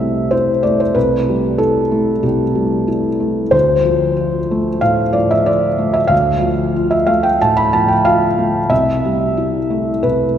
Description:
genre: neoclassical minimalist piano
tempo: 93 BPM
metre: 4/4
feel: rubato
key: A minor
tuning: A4 = 436 Hz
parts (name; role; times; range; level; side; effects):
- felt-muted upright piano; solo; 0.0-10.4 s; C2 to B5; -13 LUFS; equal; none
room: wet church reverb, RT60 3.1 s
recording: recorded in a church or concert hall, faint mains hum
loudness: -13 LUFS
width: side -9 dB against mid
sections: 0.0-10.4 A section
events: none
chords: 0.0 Am7/C; 3.5 Dm7; 8.7 Am7/C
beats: 0.31 | 0.95 1.59 2.24 2.88 | 3.54 4.18 4.83 5.48 | 6.12 6.76 7.41 8.06 | 8.70 9.36 10.04

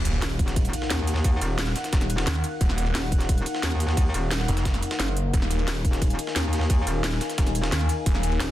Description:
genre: dark technical drum and bass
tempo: 176 BPM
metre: 4/4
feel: straight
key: Eb minor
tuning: A4 = 439 Hz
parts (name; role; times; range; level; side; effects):
- dark analog pad; sustained chords; 0.1-8.5 s; Eb4 to Ab5; -32 LUFS; left 3 dB; chorus, sidechain pumping
- snarling distorted saw bass; bass; 0.0-0.2, 2.3-5.7, 7.7-8.4 s; Eb1 to Eb2; -25 LUFS; equal; distortion, overdrive, sidechain pumping
- impact; sound effects; 0.0-1.2 s; none; -33 LUFS; equal; none
- breakbeat sampler-style drum kit; drums; 0.1-8.5 s; ride cymbal, snare drum; -35 LUFS; right 1 dB; high-pass filter on cymbals, high-pass filter on snare
- drum and bass drum kit; drums; 0.1-8.5 s; hi-hat, snare drum; -30 LUFS; equal; none
- metallic wobble bass; bass; 0.2-8.5 s; Eb1 to Eb2; -26 LUFS; equal; distortion, chorus
- electronic kick drum; drums; 0.4-8.1 s; none; -22 LUFS; equal; none
room: little or no reverb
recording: dense, heavily limited modern master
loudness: -22 LUFS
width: side -14 dB against mid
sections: 0.0-8.5 A section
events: impact 0.0-1.2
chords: 0.0 Ebm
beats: 0.22 0.56 0.90 | 1.24 1.58 1.93 2.27 | 2.61 2.95 3.29 3.63 | 3.97 4.31 4.65 4.99 | 5.33 5.68 6.02 6.36 | 6.70 7.04 7.38 7.72 | 8.06 8.40

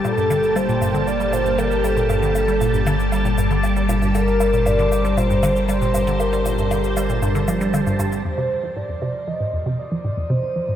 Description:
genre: ambient, sequencer-driven space music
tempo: 117 BPM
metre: 4/4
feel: straight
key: G minor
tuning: A4 = 439 Hz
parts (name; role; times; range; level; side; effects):
- mellow horn-like synth lead; melody; 0.0-10.8 s; A4 to Eb5; -23 LUFS; equal; chorus, shimmer reverb, tape echo
- string machine, full ensemble; sustained chords; 0.0-10.8 s; F3 to A5; -24 LUFS; equal; phaser, ensemble chorus, shimmer reverb
- resonant blip pluck; riff; 0.0-10.8 s; F2 to G3; -23 LUFS; equal; phaser, tape echo
- warm sub bass; bass; 0.0-8.2 s; G1; -24 LUFS; equal; none
- cabasa and woodblock; percussion; 0.0-8.2 s; none; -32 LUFS; equal; tape echo
room: wet cathedral reverb, RT60 5.4 s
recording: in a vast, echoing space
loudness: -17 LUFS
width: side -10 dB against mid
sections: 0.0-8.3 A section; 8.3-10.8 B section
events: filter sweep on synth arpeggio sound 8.3-10.8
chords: 0.0 Gmadd9; 8.3 Fsus4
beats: | 0.05 0.56 1.07 1.58 | 2.10 2.61 3.12 3.64 | 4.15 4.66 5.17 5.69 | 6.20 6.71 7.23 7.74 | 8.25 8.77 9.28 9.79 | 10.30

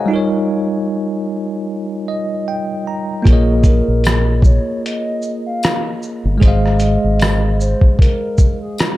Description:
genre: lo-fi hip hop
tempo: 76 BPM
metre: 4/4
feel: swing 56% on 16ths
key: Bb minor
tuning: A4 = 440 Hz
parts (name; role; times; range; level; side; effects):
- bell-like tine electric piano; accompaniment; 0.0-9.0 s; G3 to Bb5; -19 LUFS; equal; fast stereo tremolo
- fingered electric bass; bass; 3.3-7.7 s; G1 to Bb1; -15 LUFS; equal; none
- lo-fi sampler-style drum kit; drums; 3.3-9.0 s; hi-hat, kick drum, rim click, shaker; -13 LUFS; equal; none
- hollow clarinet-like synth lead; melody; 3.7-9.0 s; Ab4 to F5; -24 LUFS; left 1 dB; chorus
- tambourine; percussion; 4.1-9.0 s; none; -32 LUFS; left 5 dB; none
room: light reverb, digital ambience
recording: dark, warm production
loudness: -14 LUFS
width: side -16 dB against mid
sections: 0.0-9.0 A section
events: break 0.0-3.3; tine electric piano fill 1.7-3.3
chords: 0.1 Eb9/G; 6.4 Fm7/Ab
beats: | 0.10 0.89 1.68 2.47 | 3.26 4.05 4.84 5.62 | 6.42 7.20 7.99 8.78

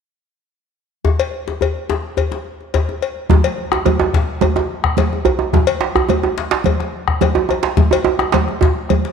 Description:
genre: west african traditional, West African drum ensemble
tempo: 107 BPM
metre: 4/4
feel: straight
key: none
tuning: none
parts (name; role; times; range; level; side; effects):
- djembe; percussion; 1.0-9.1 s; none; -20 LUFS; left 3 dB; none
- cowbell; percussion; 1.2-9.0 s; none; -22 LUFS; left 10 dB; none
- bombo; percussion; 3.3-9.0 s; none; -19 LUFS; left 3 dB; none
- congas; percussion; 3.3-9.1 s; none; -23 LUFS; right 10 dB; none
- djembe; percussion; 3.3-8.7 s; none; -18 LUFS; right 7 dB; none
room: moderate echo chamber reverb, RT60 1.9 s, small room ambience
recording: 1960s-style stereo with parts hard left and right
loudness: -15 LUFS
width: side -6 dB against mid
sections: 1.0-3.3 A section; 3.3-9.1 B section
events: none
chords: none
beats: | 1.05 1.61 2.17 2.73 | 3.29 3.85 4.41 4.97 | 5.53 6.09 6.65 7.21 | 7.78 8.34 8.90

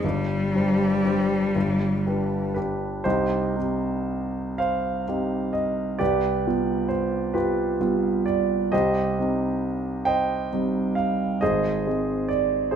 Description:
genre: classical, romantic duo for cello and grand piano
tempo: 38-47 BPM (dotted quarters)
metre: 6/8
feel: rubato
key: C minor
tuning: A4 = 439 Hz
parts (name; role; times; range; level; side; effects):
- rich cello; melody; 0.0-2.5 s; G3; -23 LUFS; left 2 dB; none
- warm concert grand piano; accompaniment; 0.0-12.8 s; G1 to G5; -22 LUFS; right 2 dB; none
room: wet stone room reverb, RT60 1.1 s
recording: none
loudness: -22 LUFS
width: side -8 dB against mid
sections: 0.0-3.0 A section; 3.0-12.8 B section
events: none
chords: 0.0 Gsus4; 1.5 G; 3.0 Cm; 6.0 G7/C; 8.7 Cm; 11.4 Ab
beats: | 0.03 1.55 | 3.04 4.58 | 6.00 7.34 | 8.72 10.06 | 11.41 12.73

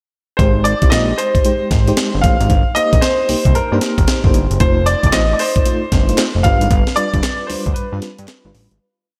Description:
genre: R&B, new jack swing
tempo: 114 BPM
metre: 4/4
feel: swing 63% on 16ths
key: unclear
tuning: A4 = 442 Hz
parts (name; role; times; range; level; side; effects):
- clear concert grand piano; melody; 0.4-8.2 s; Bb4 to F5; -21 LUFS; equal; slapback echo
- FM electric piano with tremolo; accompaniment; 0.4-8.8 s; G3 to C5; -24 LUFS; equal; slapback echo
- fat analog bass; bass; 0.4-8.8 s; F1 to G2; -20 LUFS; equal; none
- breakbeat sampler-style drum kit; drums; 0.4-8.8 s; hi-hat, kick drum, snare drum; -18 LUFS; equal; none
- group handclap; percussion; 5.1-8.4 s; none; -33 LUFS; equal; none
room: moderate lush hall reverb, RT60 1.9 s, digital ambience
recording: big arena sound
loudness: -15 LUFS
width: mono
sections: 0.4-8.8 pre-chorus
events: fade-out 6.7-8.8; break 7.8-8.8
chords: 0.4 Abmaj7; 2.5 Cm7/G; 4.6 F7; 6.4 G7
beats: | 0.39 0.92 1.44 1.97 | 2.50 3.02 3.55 4.08 | 4.60 5.13 5.65 6.18 | 6.71 7.23 7.76 8.29

